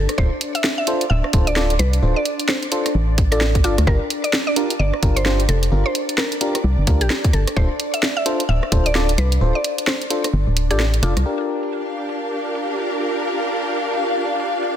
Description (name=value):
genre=UK garage, two-step garage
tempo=130 BPM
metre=4/4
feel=swing 61% on 16ths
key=G minor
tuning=A4 = 440 Hz
part: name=mallet-like synth pluck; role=melody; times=0.0-11.1 s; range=F4 to E5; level=-26 LUFS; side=equal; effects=chorus, ping-pong delay
part: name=ethereal airy pad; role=sustained chords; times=0.0-14.8 s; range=D4 to F5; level=-27 LUFS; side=equal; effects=ensemble chorus, built-in reverb, phaser, sidechain pumping
part: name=organ-like FM bass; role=bass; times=0.0-11.2 s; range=D1 to D2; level=-18 LUFS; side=equal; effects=none
part: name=garage drum kit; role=drums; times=0.1-14.7 s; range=hi-hat, rim click, snare drum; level=-22 LUFS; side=equal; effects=overdrive, low-pass filter on snare, small room reverb, low-pass filter on hats
part: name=FM electric piano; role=stabs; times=0.2-14.8 s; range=D4 to D5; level=-25 LUFS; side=left 1 dB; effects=chorus, low-pass filter, ping-pong delay
part: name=electronic kick drum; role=drums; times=0.2-8.8 s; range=none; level=-18 LUFS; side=equal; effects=overdrive, small room reverb
part: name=warm symphonic string section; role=texture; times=11.3-14.8 s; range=D4 to F5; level=-23 LUFS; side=equal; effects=sidechain pumping
room=light reverb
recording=dense, heavily limited modern master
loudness=-17 LUFS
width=side -10 dB against mid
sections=0.0-11.3 A section; 11.3-14.8 B section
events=kick drops out 10.3-11.3; filter sweep on FM electric piano 11.3-14.8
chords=0.2 Dm7; 3.9 Gm7; 7.6 Dm7; 11.3 Gm7